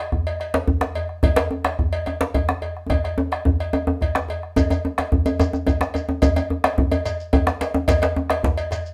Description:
west african traditional, West African drum ensemble; 144 BPM (dotted quarters); 12/8; straight
bombo; percussion; 0.1-8.8 s; -24 LUFS; equal
djembe; percussion; 0.1-8.8 s; -30 LUFS; equal
cowbell; percussion; 0.3-8.8 s; -30 LUFS; equal
djembe; percussion; 0.5-8.6 s; -24 LUFS; equal
shekere; percussion; 4.6-8.9 s; -35 LUFS; equal
moderate studio reverb, RT60 0.6 s; -22 LUFS; mono
0.0-4.6 A section; 4.6-8.9 B section
drum fill 2.9-4.6
0.40 0.82 | 1.24 1.65 2.07 2.49 | 2.90 3.32 3.73 4.15 | 4.57 4.98 5.40 5.81 | 6.23 6.64 7.06 7.47 | 7.89 8.30 8.71

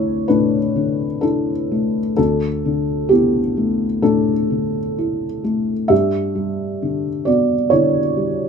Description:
neoclassical minimalist piano; 64 BPM; 4/4; rubato; A4 = 441 Hz
felt-muted upright piano; solo; 0.0-8.5 s; D2 to E5; -16 LUFS; left 1 dB
moderate studio reverb, RT60 0.5 s; minimal, uncompressed stereo recording; -16 LUFS; side -6 dB against mid
0.0-8.5 A section
0.0 Dsus2; 5.9 G
0.29 1.24 | 2.18 3.11 4.04 4.97 | 5.91 6.82 7.72

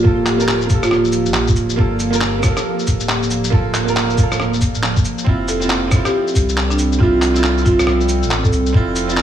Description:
future garage; 138 BPM; 4/4; swing 62% on 16ths; G dorian; A4 = 440 Hz
marimba with medium mallets; melody; 0.0-1.3, 5.5-8.7 s; D4 to A4; -20 LUFS; right 1 dB; vintage 12-bit sampler grit, tape echo
bright upright piano; accompaniment; 0.0-9.2 s; Bb3 to E5; -22 LUFS; right 4 dB; sidechain pumping, tape echo
warbly tape-like pad; sustained chords; 0.0-9.2 s; F3 to D5; -23 LUFS; right 1 dB; chorus, built-in reverb, vintage 12-bit sampler grit, sidechain pumping
soft dub sub bass; bass; 0.0-9.2 s; D1 to C2; -21 LUFS; equal; sidechain pumping
electronic kick drum; drums; 0.0-8.9 s; -16 LUFS; equal; small room ambience
electronic handclaps, cabasa, shaker and rim click; drums; 0.3-9.2 s; -21 LUFS; left 1 dB; small room ambience
light reverb, digital ambience; small room ambience; -14 LUFS; side -10 dB against mid
0.0-9.2 A section
0.0 Gm7; 5.3 Dm7/F
| 0.05 0.48 0.92 1.35 | 1.79 2.22 2.66 3.09 | 3.53 3.96 4.40 4.83 | 5.27 5.70 6.14 6.57 | 7.00 7.44 7.88 8.31 | 8.74 9.18

